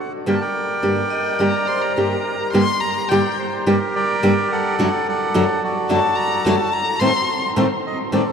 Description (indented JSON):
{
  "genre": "tango",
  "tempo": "107 BPM",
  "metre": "4/4",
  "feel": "rubato",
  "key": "G harmonic minor",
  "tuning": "A4 = 444 Hz",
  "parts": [
    { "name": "bandoneon", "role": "melody", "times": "0.0-8.3 s", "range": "F#4 to A5", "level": "-22 LUFS", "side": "right 1 dB", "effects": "tape echo" },
    { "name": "nylon-string guitar", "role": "accompaniment", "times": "0.3-8.2 s", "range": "F#2 to G4", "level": "-20 LUFS", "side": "equal", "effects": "none" },
    { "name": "vibraphone with hard mallets", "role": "second line", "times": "0.8-2.5 s", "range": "Bb4 to Eb5", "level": "-32 LUFS", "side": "equal", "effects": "none" },
    { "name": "warm violin", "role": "second line", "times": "1.1-7.4 s", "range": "G5 to C6", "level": "-24 LUFS", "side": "left 3 dB", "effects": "none" }
  ],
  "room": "wet cathedral reverb, RT60 7.0 s",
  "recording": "dreamy mix soaked in reverb",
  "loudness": "-17 LUFS",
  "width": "side -6 dB against mid",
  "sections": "0.0-2.5 A section; 2.5-8.3 B section",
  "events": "none",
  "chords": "0.3 Gm; 4.8 D/F#; 7.0 Adim",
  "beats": "| 0.27 0.83 1.40 1.97 | 2.54 3.10 3.67 4.23 | 4.79 5.34 5.90 6.46 | 7.01 7.56 8.12"
}